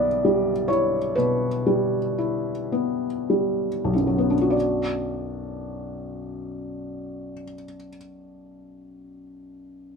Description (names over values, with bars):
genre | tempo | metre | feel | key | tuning
classical, romantic nocturne for solo piano | 30-45 BPM (dotted quarters) | 12/8 | rubato | B minor | A4 = 440 Hz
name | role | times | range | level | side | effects
felt-muted upright piano | solo | 0.0-10.0 s | B1 to E5 | -23 LUFS | left 1 dB | none
room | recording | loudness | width
moderate studio reverb, RT60 0.8 s | minimal, uncompressed stereo recording | -21 LUFS | side -5 dB against mid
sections
0.0-4.5 A section; 4.5-10.0 B section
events
slowing down 0.0-4.5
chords
0.0 Em/B; 4.5 Bm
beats
1.17 2.71 | 4.54 6.14 7.72 9.35